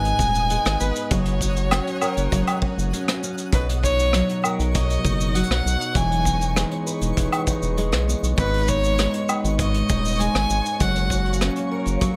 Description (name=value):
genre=folktronica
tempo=99 BPM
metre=4/4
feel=straight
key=B major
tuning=A4 = 440 Hz
part: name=clear violin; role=melody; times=0.0-11.4 s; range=B4 to G#5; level=-28 LUFS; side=equal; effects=delay, plate reverb
part: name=picked steel-string acoustic guitar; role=arpeggios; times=0.0-12.2 s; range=G#2 to B4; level=-29 LUFS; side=equal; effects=delay
part: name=round analog bass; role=bass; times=0.0-12.0 s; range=D#1 to B1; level=-26 LUFS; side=equal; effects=none
part: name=vintage brush drum kit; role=drums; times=0.0-12.1 s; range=cabasa, hi-hat, rim click, woodblock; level=-29 LUFS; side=equal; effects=none
part: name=twinkling granular texture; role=texture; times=0.0-12.2 s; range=C#5 to D#6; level=-39 LUFS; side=equal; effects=built-in reverb, plate reverb
part: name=kick drum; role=drums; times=0.2-12.1 s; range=none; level=-30 LUFS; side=equal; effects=none
part: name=warbly tape-like pad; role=sustained chords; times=4.3-12.2 s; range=E3 to G#4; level=-33 LUFS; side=equal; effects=chorus, built-in reverb
room=moderate small room ambience, RT60 0.5 s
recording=none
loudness=-22 LUFS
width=mono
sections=0.0-12.2 A section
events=break 2.9-3.5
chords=0.0 G#m; 1.1 F#; 3.5 Bmaj7; 6.0 Emaj7; 8.4 G#m; 10.8 F#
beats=0.50 | 1.11 1.71 2.32 2.93 | 3.53 4.14 4.74 5.35 | 5.96 6.56 7.17 7.77 | 8.38 8.99 9.59 10.20 | 10.80 11.41 12.02